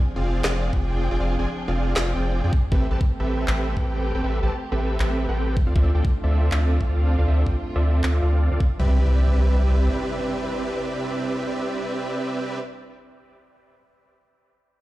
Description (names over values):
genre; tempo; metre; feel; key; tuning
future bass; 158 BPM; 4/4; half-time; C major; A4 = 440 Hz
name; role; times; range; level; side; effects
warm studio string section; sustained chords; 0.0-12.6 s; C3 to G5; -33 LUFS; equal; sidechain pumping
dense compressed supersaw; riff; 0.2-12.6 s; C4 to A5; -27 LUFS; right 1 dB; sidechain pumping, low-pass filter, dub echo
saturated sub bass; bass; 0.2-9.9 s; F1 to F2; -21 LUFS; equal; tube saturation, sidechain pumping
electronic snare drum and handclaps; drums; 0.4-8.1 s; none; -26 LUFS; equal; studio reverb
electronic kick drum; drums; 0.7-8.7 s; none; -22 LUFS; equal; studio reverb
impact; sound effects; 8.8-12.6 s; none; -30 LUFS; equal; none
room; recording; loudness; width
little or no reverb; played on a big sound system in a bare room, stone room reverb; -20 LUFS; side -17 dB against mid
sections
0.0-8.8 A section; 8.8-11.8 B section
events
none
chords
0.0 Fm6; 2.7 Am9; 5.6 Dm9; 8.8 Cmaj9